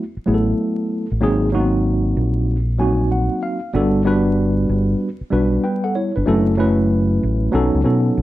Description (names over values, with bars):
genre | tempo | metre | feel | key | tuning
hip hop, jazz-hop | 95 BPM | 4/4 | swing 65% on 16ths | unclear | A4 = 440 Hz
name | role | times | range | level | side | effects
tine electric piano | accompaniment | 0.0-8.2 s | F#3 to G#5 | -18 LUFS | equal | medium stereo tremolo
fingered electric bass | bass | 0.2-8.2 s | F#1 to B2 | -19 LUFS | equal | none
room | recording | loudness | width
wet studio reverb, RT60 0.6 s | dark, warm production, vinyl crackle | -16 LUFS | side -15 dB against mid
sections
0.0-8.2 A section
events
tine electric piano fill 2.5-3.7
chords
0.0 F#m11; 1.2 G#9; 3.7 Gmaj9; 6.3 F#m7; 7.5 B9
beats
0.58 | 1.22 1.85 2.48 3.11 | 3.74 4.38 5.01 5.64 | 6.27 6.90 7.53 8.16